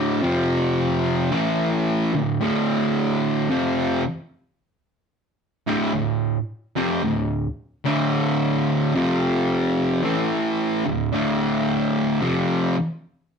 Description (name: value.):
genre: metal.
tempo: 55 BPM.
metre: 4/4.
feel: straight.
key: D minor.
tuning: A4 = 441 Hz.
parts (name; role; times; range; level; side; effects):
fuzz guitar; solo; 0.0-12.8 s; D2 to A3; -20 LUFS; equal; distortion.
room: moderate studio reverb, RT60 0.6 s.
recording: rough rehearsal-room recording.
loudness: -20 LUFS.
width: side -6 dB against mid.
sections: 0.0-13.4 A section.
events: none.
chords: 0.2 F5; 1.3 Dm; 8.9 F5; 10.0 Dm.